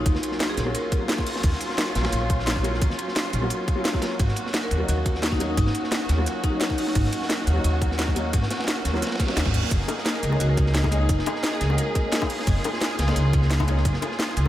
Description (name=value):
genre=liquid drum and bass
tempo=174 BPM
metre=4/4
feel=straight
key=unclear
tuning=A4 = 439 Hz
part: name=marimba with medium hard mallets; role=melody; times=0.0-1.0, 4.6-7.0, 10.1-12.0 s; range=Eb4 to Bb4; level=-33 LUFS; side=left 1 dB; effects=diffuse ambient delay
part: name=felt-muted upright piano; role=accompaniment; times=0.0-14.5 s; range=Gb3 to Gb4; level=-32 LUFS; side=left 1 dB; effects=tape echo
part: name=muted studio string section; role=sustained chords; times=0.0-14.5 s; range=Gb3 to Ab4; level=-30 LUFS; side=equal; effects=sidechain pumping
part: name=upright bass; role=bass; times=0.0-14.5 s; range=Gb1 to Eb2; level=-23 LUFS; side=equal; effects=tube saturation
part: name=impact and reverse cymbal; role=sound effects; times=0.0-0.1, 9.2-9.7 s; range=none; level=-38 LUFS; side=right 5 dB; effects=none
part: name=crunchy breakbeat drum kit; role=drums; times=0.1-14.5 s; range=hi-hat, ride cymbal, snare drum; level=-32 LUFS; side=equal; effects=high-pass filter on cymbals, high-pass filter on hats, high-pass filter on snare, high-pass filter on room
part: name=electronic kick drum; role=drums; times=0.1-13.9 s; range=none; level=-25 LUFS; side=equal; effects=none
part: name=garage drum kit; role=drums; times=0.1-14.5 s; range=hi-hat, rim click, snare drum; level=-30 LUFS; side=equal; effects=none
part: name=bongos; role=percussion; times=9.9-14.5 s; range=none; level=-34 LUFS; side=left 5 dB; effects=none
room=light reverb, studio ambience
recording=none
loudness=-21 LUFS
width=side -13 dB against mid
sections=0.0-14.5 A section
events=reverse cymbal 9.2-9.7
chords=0.0 Ebm7 (rootless); 4.2 Ab9sus4 (rootless); 9.7 Gb69 (rootless)